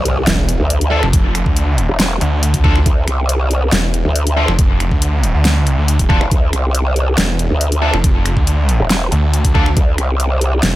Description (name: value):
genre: heavy wobble dubstep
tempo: 139 BPM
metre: 4/4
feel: half-time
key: D minor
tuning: A4 = 440 Hz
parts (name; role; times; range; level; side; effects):
- growl bass; bass; 0.0-10.6 s; E1 to D2; -15 LUFS; equal; chorus, overdrive
- impact; sound effects; 0.0-1.1 s; none; -25 LUFS; equal; none
- dubstep drum kit; drums; 0.1-10.7 s; finger snaps, hi-hat, snare drum; -19 LUFS; equal; overdrive
- snarling distorted saw bass; bass; 0.3-10.8 s; E1 to D2; -15 LUFS; equal; distortion, overdrive
- high-gain distorted guitar; stabs; 0.9-9.6 s; D4 to A4; -22 LUFS; left 1 dB; distortion, tape echo
- electronic kick drum; drums; 1.1-9.9 s; none; -14 LUFS; equal; overdrive
room: digital ambience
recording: none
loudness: -12 LUFS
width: side -16 dB against mid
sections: 0.0-10.8 A section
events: impact 0.0-1.1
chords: 0.0 Dm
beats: 0.27 0.70 | 1.13 1.57 2.00 2.43 | 2.86 3.29 3.72 4.16 | 4.59 5.02 5.45 5.88 | 6.31 6.75 7.18 7.61 | 8.04 8.47 8.90 9.34 | 9.77 10.20 10.63